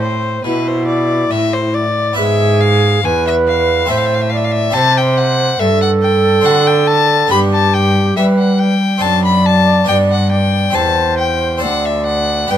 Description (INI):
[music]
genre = classical, baroque-style sonata movement with continuo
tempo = 70 BPM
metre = 3/4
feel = straight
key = G major from 4.8 s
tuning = A4 = 440 Hz
[part]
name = warm violin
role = melody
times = 0.0-12.6 s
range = B4 to B5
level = -16 LUFS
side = left 5 dB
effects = none
[part]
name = baroque flute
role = second line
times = 0.0-12.6 s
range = E4 to D5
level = -16 LUFS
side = right 3 dB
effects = none
[part]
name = harpsichord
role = accompaniment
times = 0.0-12.6 s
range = D2 to D5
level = -23 LUFS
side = equal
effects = none
[part]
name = rich cello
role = bass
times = 0.0-12.6 s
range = D2 to G3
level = -16 LUFS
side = equal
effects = none
[sound]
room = light reverb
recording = close, detailed microphones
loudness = -11 LUFS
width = side -10 dB against mid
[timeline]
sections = 0.0-12.6 A section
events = none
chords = 0.0 Am; 2.2 E/G#; 3.9 Am; 4.8 C; 6.5 D7; 7.3 G; 9.0 D7/F#; 9.9 G; 10.7 C/E; 11.6 D7